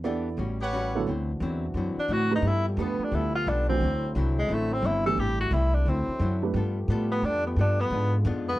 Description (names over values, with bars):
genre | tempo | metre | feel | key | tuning
jazz, big band swing | 175 BPM | 4/4 | swing 64% on 8ths | D mixolydian | A4 = 440 Hz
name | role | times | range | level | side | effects
archtop guitar, miked and amplified | accompaniment | 0.0-8.5 s | G#2 to A4 | -35 LUFS | left 3 dB | none
warm baby grand piano | accompaniment | 0.0-6.5 s | D2 to D5 | -30 LUFS | right 6 dB | none
upright bass | bass | 0.0-8.6 s | G1 to A2 | -27 LUFS | equal | none
bright trumpet section | stabs | 0.6-1.1 s | G4 to F#5 | -30 LUFS | right 1 dB | none
bright trombone section | sustained chords | 1.1-8.6 s | C3 to G4 | -36 LUFS | left 2 dB | none
clear tenor saxophone | melody | 2.0-8.6 s | G3 to A4 | -28 LUFS | left 1 dB | none
room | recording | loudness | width
light reverb | dry, close 1970s-style studio recording | -24 LUFS | side -16 dB against mid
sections
0.0-1.1 A section; 1.1-8.6 B section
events
tenor saxophone solo 1.1-8.6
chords
0.4 A13; 1.1 D9; 2.4 G9; 3.8 D9; 5.2 Am7; 5.9 D9; 6.5 G9; 7.9 G#dim7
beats
0.05 0.39 0.73 | 1.07 1.42 1.76 2.10 | 2.44 2.78 3.13 3.47 | 3.81 4.15 4.50 4.84 | 5.18 5.52 5.86 6.21 | 6.55 6.89 7.23 7.58 | 7.92 8.26